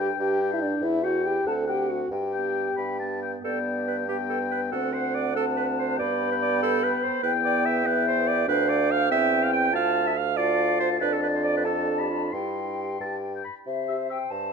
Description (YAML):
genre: quick classical-period movement for wind quintet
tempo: 94 BPM (dotted quarters)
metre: 6/8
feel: rubato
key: G major, C major from 8.5 s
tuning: A4 = 440 Hz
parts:
  - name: mellow hollow silver concert flute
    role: melody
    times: 0.0-14.5 s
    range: D5 to B5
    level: -31 LUFS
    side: left 6 dB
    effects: none
  - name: warm oboe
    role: second line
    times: 0.0-14.2 s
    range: E5 to C6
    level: -30 LUFS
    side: left 8 dB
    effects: none
  - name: clear French horn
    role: accompaniment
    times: 0.0-14.2 s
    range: B3 to A4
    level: -29 LUFS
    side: equal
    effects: none
  - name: clear clarinet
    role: accompaniment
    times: 0.0-14.5 s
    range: B3 to G5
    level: -28 LUFS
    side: right 10 dB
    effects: none
  - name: warm bassoon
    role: bass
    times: 0.0-14.5 s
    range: D2 to C3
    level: -30 LUFS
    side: right 2 dB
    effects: none
room: moderate recital hall reverb, RT60 1.7 s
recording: close, detailed microphones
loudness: -23 LUFS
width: side -5 dB against mid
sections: 0.0-3.4 A section; 3.4-13.7 B section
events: none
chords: 0.0 G5; 0.8 Em; 1.5 D7; 2.1 G; 4.7 D7; 6.0 G; 7.2 Em; 8.5 G5/D; 9.1 C/E; 9.7 Dm; 11.0 Dm/F; 12.3 C/G; 13.0 N.C.; 13.7 C